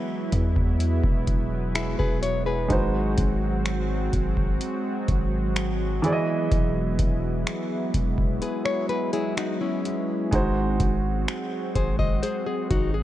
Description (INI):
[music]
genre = contemporary R&B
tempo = 63 BPM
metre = 4/4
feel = straight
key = E major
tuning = A4 = 440 Hz
[part]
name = warm grand piano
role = accompaniment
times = 0.0-13.0 s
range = E3 to D#5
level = -29 LUFS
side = right 2 dB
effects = none
[part]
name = lush unison pad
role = sustained chords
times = 0.0-13.0 s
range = F#3 to F#4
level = -29 LUFS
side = right 1 dB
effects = chorus, sidechain pumping
[part]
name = long sustained 808-style bass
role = bass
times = 0.3-13.0 s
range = E1 to E2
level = -26 LUFS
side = equal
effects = none
[part]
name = booming analog drum machine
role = drums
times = 0.3-12.9 s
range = finger snaps, hi-hat, kick drum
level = -26 LUFS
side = equal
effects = none
[part]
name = nylon-string guitar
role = arpeggios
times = 1.7-13.0 s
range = C#4 to D#5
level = -28 LUFS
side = left 4 dB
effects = digital delay
[sound]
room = light reverb, digital ambience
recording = worn, warbling old tape, cassette tape, warbly pitch drift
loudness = -22 LUFS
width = side -13 dB against mid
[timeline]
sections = 0.0-13.0 A section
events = kick muted 8.4-10.3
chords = 0.0 Emaj7; 2.7 G#7; 6.0 Emaj7; 10.3 G#7